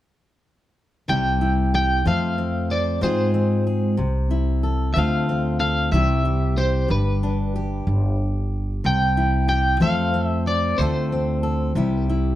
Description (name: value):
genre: acoustic folk duo or small band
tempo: 62 BPM (dotted quarters)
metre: 6/8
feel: straight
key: C major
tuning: A4 = 439 Hz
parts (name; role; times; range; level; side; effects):
- electric guitar at the edge of break-up; melody; 1.1-12.0 s; B4 to G5; -24 LUFS; equal; tremolo
- fingerpicked steel-string acoustic guitar; accompaniment; 1.1-12.4 s; G2 to C5; -24 LUFS; left 2 dB; none
- upright bass; bass; 1.1-12.4 s; G1 to Ab2; -22 LUFS; right 1 dB; none
room: light reverb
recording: dark, warm production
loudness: -19 LUFS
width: side -13 dB against mid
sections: 1.1-12.4 A section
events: none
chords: 1.1 C; 2.0 F; 3.0 Ab6; 4.0 C6; 5.0 Dm7; 5.9 C; 6.9 G; 8.8 C; 9.8 F; 10.8 Dm7; 11.8 C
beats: | 1.08 2.05 | 3.02 3.99 | 4.96 5.93 | 6.90 7.87 | 8.84 9.81 | 10.78 11.75